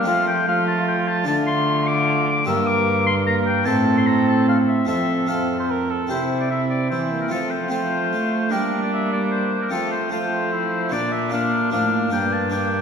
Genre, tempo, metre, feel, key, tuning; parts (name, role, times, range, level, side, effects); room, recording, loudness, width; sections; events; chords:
classical, renaissance-style consort dance; 150 BPM; 3/4; straight; G dorian; A4 = 440 Hz
clear oboe; melody; 0.0-12.8 s; A4 to E6; -23 LUFS; left 4 dB
warm cor anglais; second line; 0.0-12.8 s; D4 to C5; -27 LUFS; right 4 dB
clear trombone; accompaniment; 0.0-12.8 s; A3 to C4; -24 LUFS; left 1 dB
harpsichord; accompaniment; 0.0-12.8 s; F2 to Bb4; -28 LUFS; left 1 dB
rich cello; bass; 0.0-12.8 s; F2 to A3; -24 LUFS; right 2 dB
wet church reverb, RT60 3.0 s; recorded in a church or concert hall; -18 LUFS; side -6 dB against mid
0.0-6.1 A section; 6.1-12.8 B section
0.1 F; 1.3 Dm; 2.5 Gm; 3.7 Am; 4.9 F; 6.1 C; 7.3 F; 8.5 Gm; 9.7 F; 10.9 Bb; 12.1 Gm